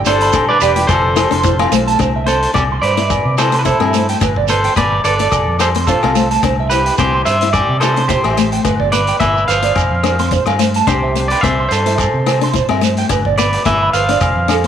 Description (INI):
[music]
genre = highlife guitar band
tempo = 108 BPM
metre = 4/4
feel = swing 54% on 16ths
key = C major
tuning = A4 = 440 Hz
[part]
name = picked steel-string acoustic guitar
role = accompaniment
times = 0.0-14.7 s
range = A3 to F4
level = -20 LUFS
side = left 9 dB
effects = none
[part]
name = tonewheel organ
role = sustained chords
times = 0.0-2.0 s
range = G3 to A4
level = -27 LUFS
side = equal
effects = overdrive, lush chorus
[part]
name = electric guitar at the edge of break-up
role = melody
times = 0.1-14.7 s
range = E4 to F5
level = -16 LUFS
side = right 1 dB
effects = none
[part]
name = clear trumpet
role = second line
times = 0.1-1.7 s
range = G4 to B4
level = -22 LUFS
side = left 9 dB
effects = none
[part]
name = electric guitar through a small old amp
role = arpeggios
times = 0.1-14.6 s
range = G4 to D6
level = -20 LUFS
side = right 11 dB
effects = none
[part]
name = fingered electric bass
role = bass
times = 0.1-14.7 s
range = E1 to C3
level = -19 LUFS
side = equal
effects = none
[part]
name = vintage drum kit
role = drums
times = 0.1-14.7 s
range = hi-hat, kick drum, rim click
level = -22 LUFS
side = left 3 dB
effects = none
[part]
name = shekere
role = percussion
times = 0.1-14.6 s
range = none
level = -23 LUFS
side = right 6 dB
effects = none
[part]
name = agogo bells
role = percussion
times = 0.3-14.6 s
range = none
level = -23 LUFS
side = left 9 dB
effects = none
[sound]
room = moderate spring reverb, RT60 1.6 s, small room ambience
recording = 1960s-style stereo with parts hard left and right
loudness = -12 LUFS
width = side -9 dB against mid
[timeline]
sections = 0.0-2.0 A section; 2.0-14.7 B section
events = none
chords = 0.0 G; 0.9 F; 2.0 C; 4.2 G; 5.3 F; 6.4 C; 8.7 G; 9.8 F; 10.9 C; 13.1 G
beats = 0.34 0.90 1.45 | 2.00 2.55 3.11 3.66 | 4.22 4.77 5.33 5.88 | 6.43 6.99 7.55 8.10 | 8.66 9.21 9.77 10.32 | 10.88 11.44 11.99 12.54 | 13.10 13.65 14.21